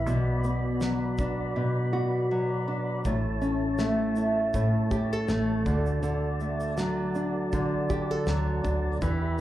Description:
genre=acoustic pop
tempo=80 BPM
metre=4/4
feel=swing 55% on 16ths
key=D major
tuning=A4 = 439 Hz
part: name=nylon-string guitar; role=accompaniment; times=0.0-9.4 s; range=A2 to A4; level=-26 LUFS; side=equal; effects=plate reverb, slapback echo
part: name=tonewheel organ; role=sustained chords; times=0.0-9.4 s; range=E4 to B5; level=-35 LUFS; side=left 1 dB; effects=slow rotary speaker, plate reverb
part: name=vintage muted fingered electric bass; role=bass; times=0.0-9.4 s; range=A1 to E2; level=-32 LUFS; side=equal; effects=none
part: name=cloth-damped thuddy drum kit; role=drums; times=0.1-9.4 s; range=kick drum, shaker, snare drum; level=-33 LUFS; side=equal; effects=none
room=moderate club reverb, RT60 0.7 s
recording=live gig heard through the venue's PA, club reverb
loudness=-25 LUFS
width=side -13 dB against mid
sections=0.0-3.1 A section; 3.1-9.4 A section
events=none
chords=0.1 Bm; 3.1 A; 5.7 D

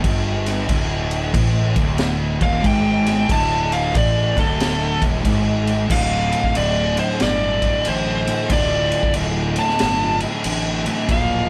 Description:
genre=stoner and doom metal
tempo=92 BPM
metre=4/4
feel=swing 65% on 8ths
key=D minor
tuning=A4 = 445 Hz
part: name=thick fuzz guitar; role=riff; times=0.0-11.5 s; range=D2 to Bb3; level=-28 LUFS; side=equal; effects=none
part: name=thick fuzz guitar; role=riff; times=0.0-11.5 s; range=D2 to Bb3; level=-29 LUFS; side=equal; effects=none
part: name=thick fuzz guitar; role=riff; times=0.0-11.5 s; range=D2 to Bb4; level=-30 LUFS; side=equal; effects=distortion
part: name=fuzz fingered electric bass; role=bass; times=0.0-11.5 s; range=D1 to A1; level=-28 LUFS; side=equal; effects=overdrive
part: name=raw garage drum kit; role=drums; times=0.0-11.3 s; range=crash cymbal, kick drum, snare drum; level=-24 LUFS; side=equal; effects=none
part: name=fuzz lead guitar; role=melody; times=2.4-11.5 s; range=A4 to A5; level=-24 LUFS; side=equal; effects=distortion
room=moderate stone room reverb, RT60 1.0 s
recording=band playing live in one room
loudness=-19 LUFS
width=mono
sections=0.0-5.9 A section; 5.9-11.5 B section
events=lead electric guitar solo 0.0-5.9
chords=0.0 D5; 5.9 Dm

